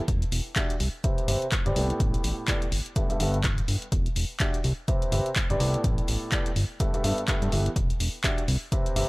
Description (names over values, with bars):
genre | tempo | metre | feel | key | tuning
piano house | 125 BPM | 4/4 | swing 58% on 16ths | unclear | A4 = 440 Hz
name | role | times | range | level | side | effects
fat analog bass | bass | 0.1-9.1 s | E1 to G2 | -26 LUFS | equal | sidechain pumping
electronic kick drum | drums | 0.1-8.8 s | none | -27 LUFS | equal | none
house drum kit | drums | 0.1-9.1 s | handclaps, hi-hat | -31 LUFS | left 1 dB | none
bright concert grand piano | riff | 0.6-9.1 s | G2 to E5 | -31 LUFS | equal | sidechain pumping, low-pass filter, analog delay
room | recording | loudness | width
little or no reverb | dry, gritty hardware recording | -24 LUFS | side -24 dB against mid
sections
0.0-9.1 A section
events
none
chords
0.1 Em9; 0.8 Cmaj7; 2.0 A9sus4; 3.0 G69; 3.9 Em9; 4.6 Cmaj7; 5.8 A9sus4; 6.8 G69; 7.8 Em9; 8.5 Cmaj7